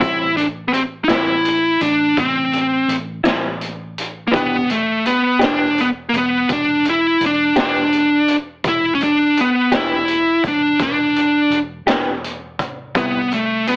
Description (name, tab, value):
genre	slow blues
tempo	56 BPM (dotted quarters)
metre	12/8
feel	straight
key	E minor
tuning	A4 = 443 Hz
part	dark smooth lead guitar	melody	0.0-13.8 s	A3 to E4	-15 LUFS	equal	overdrive
part	electric guitar through a small old amp	accompaniment	0.0-13.2 s	A2 to G4	-19 LUFS	left 1 dB	tremolo
part	vintage muted fingered electric bass	bass	0.0-13.8 s	E1 to C2	-33 LUFS	equal	none
part	raw garage drum kit	drums	0.0-13.8 s	hi-hat, kick drum, snare drum	-23 LUFS	equal	none
room	moderate studio reverb, RT60 0.6 s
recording	heavily compressed radio sound, AM radio sound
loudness	-14 LUFS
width	side -27 dB against mid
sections	0.0-13.8 A section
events	none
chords	0.0 Am7; 4.3 Em7; 12.9 Cmaj7